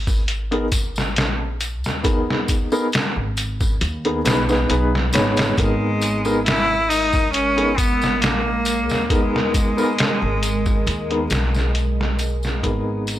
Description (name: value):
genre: trip hop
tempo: 68 BPM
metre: 4/4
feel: swing 54% on 16ths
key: G# minor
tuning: A4 = 440 Hz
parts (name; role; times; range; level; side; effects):
- upright bass; bass; 0.0-13.2 s; G#1 to D#2; -25 LUFS; equal; none
- trip hop sampler-style drum kit; drums; 0.1-13.2 s; hi-hat, kick drum, snare drum; -21 LUFS; equal; none
- tambourine; percussion; 0.1-13.2 s; none; -33 LUFS; left 2 dB; none
- felt-muted upright piano; accompaniment; 0.5-13.2 s; B3 to C#5; -22 LUFS; equal; tremolo, vintage 12-bit sampler grit
- bright cello; melody; 5.6-11.7 s; G#3 to E4; -22 LUFS; equal; tape echo
- dark analog pad; sustained chords; 6.2-13.2 s; G#3 to A#4; -28 LUFS; right 1 dB; chorus
room: little or no reverb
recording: dry, gritty hardware recording, transformer saturation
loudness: -17 LUFS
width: side -13 dB against mid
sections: 0.0-13.2 A section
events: fade-out 10.3-13.2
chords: 0.0 G#madd9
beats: 0.28 1.16 | 2.04 2.92 3.81 4.69 | 5.57 6.45 7.34 8.22 | 9.10 9.98 10.87 11.75 | 12.63